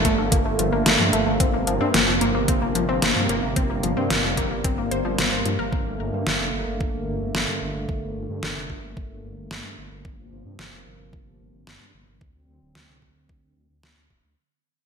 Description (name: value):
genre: synthwave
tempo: 111 BPM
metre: 4/4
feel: straight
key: unclear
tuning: A4 = 440 Hz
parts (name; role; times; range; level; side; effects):
- warm analog pad; sustained chords; 0.0-14.4 s; C3 to C4; -28 LUFS; right 1 dB; chorus, sidechain pumping
- wide unison pluck; arpeggios; 0.0-5.7 s; F3 to C5; -25 LUFS; left 2 dB; ping-pong delay
- wide detuned saw bass; bass; 0.0-14.4 s; D1 to G2; -29 LUFS; equal; chorus, sidechain pumping
- electronic kick drum; drums; 0.0-14.2 s; none; -25 LUFS; equal; overdrive
- pop drum kit; drums; 0.1-13.9 s; hi-hat, snare drum; -24 LUFS; equal; overdrive, gated reverb
room: wet lush hall reverb, RT60 1.6 s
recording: bright 1980s-style digital production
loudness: -20 LUFS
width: side -6 dB against mid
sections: 0.0-14.4 A section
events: fade-out 0.0-14.4; filter sweep on detuned saw bass 0.0-14.4; filter sweep on analog synth pad 0.0-14.4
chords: 0.0 Bbmaj7; 1.4 Fsus4; 5.7 Bbmaj7; 10.0 Fsus4; 12.2 D7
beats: 0.32 0.86 | 1.40 1.94 2.48 3.02 | 3.56 4.10 4.64 5.18 | 5.72 6.26 6.81 7.35 | 7.89 8.43 8.97 9.51 | 10.05 10.59 11.13 11.67 | 12.21 12.75 13.29 13.83